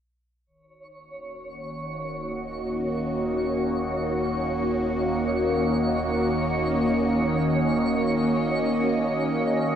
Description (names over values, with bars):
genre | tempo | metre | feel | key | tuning
ambient | free time | none | none | Eb minor | A4 = 441 Hz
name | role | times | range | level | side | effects
evolving wavetable pad | sustained chords | 1.6-9.8 s | Eb3 to Eb5 | -23 LUFS | equal | phaser, built-in reverb
fat analog bass | bass | 0.5-9.8 s | Eb1 | -39 LUFS | equal | none
twinkling granular texture | texture | 0.8-9.8 s | Db5 | -31 LUFS | right 1 dB | built-in reverb, shimmer reverb
room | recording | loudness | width
wet plate reverb, RT60 3.0 s | dark, warm production | -22 LUFS | side -9 dB against mid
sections
0.5-9.8 A section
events
fade-in on analog synth bass 0.5-9.8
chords
0.5 Ebm7